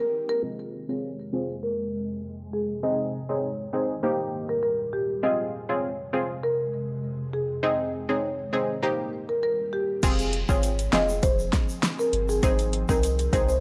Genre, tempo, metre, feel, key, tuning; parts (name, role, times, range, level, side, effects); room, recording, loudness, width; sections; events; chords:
dancehall; 100 BPM; 4/4; straight; F minor; A4 = 441 Hz
marimba with medium mallets; melody; 0.0-13.6 s; G4 to Eb5; -30 LUFS; equal; low-pass filter, tape echo
ethereal airy pad; sustained chords; 0.0-13.6 s; Eb2 to Ab4; -38 LUFS; equal; ensemble chorus, built-in reverb, phaser, sidechain pumping, low-pass filter
punchy chord stab; accompaniment; 0.4-13.5 s; Bb3 to Ab4; -32 LUFS; equal; chorus, low-pass filter
punchy sub bass; bass; 10.0-13.6 s; F1 to C2; -30 LUFS; equal
deep house drum kit; drums; 10.0-13.5 s; crash cymbal, hi-hat, kick drum, snare drum; -27 LUFS; equal; vintage 12-bit sampler grit
tube shaker; percussion; 10.0-13.6 s; -44 LUFS; equal
light reverb, digital ambience; dry, gritty hardware recording; -27 LUFS; mono
0.4-10.0 A section; 10.0-13.6 B section
break 0.0-0.4; filter sweep 0.4-10.0
0.4 Fm; 2.8 Ab; 4.0 Eb; 5.2 Fm; 7.6 Ab; 8.8 Eb; 10.0 Fm; 12.4 Ab